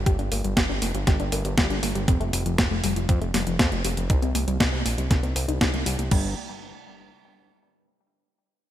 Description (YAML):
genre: italo disco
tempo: 119 BPM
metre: 4/4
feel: straight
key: unclear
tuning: A4 = 440 Hz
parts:
  - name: analog pluck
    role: arpeggios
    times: 0.0-6.3 s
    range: F3 to C5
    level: -30 LUFS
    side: left 3 dB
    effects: chorus, phaser, digital delay
  - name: fat analog bass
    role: bass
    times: 0.0-6.3 s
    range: F1 to F2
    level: -27 LUFS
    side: equal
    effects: digital delay
  - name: clean 12-bit digital drum machine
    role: drums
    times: 0.1-6.2 s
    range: crash cymbal, kick drum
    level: -23 LUFS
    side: equal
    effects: overdrive
  - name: clean 12-bit digital drum machine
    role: drums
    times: 0.1-6.1 s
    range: hi-hat, snare drum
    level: -26 LUFS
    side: equal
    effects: overdrive
room: light reverb, digital ambience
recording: bright 1980s-style digital production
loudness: -21 LUFS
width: side -12 dB against mid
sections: 0.0-6.1 A section; 6.1-8.1 B section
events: none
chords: 0.0 Gm; 2.1 Fadd9; 4.1 Cm7; 6.1 N.C.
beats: | 0.06 0.57 1.07 1.58 | 2.08 2.58 3.09 3.59 | 4.10 4.60 5.11 5.61 | 6.11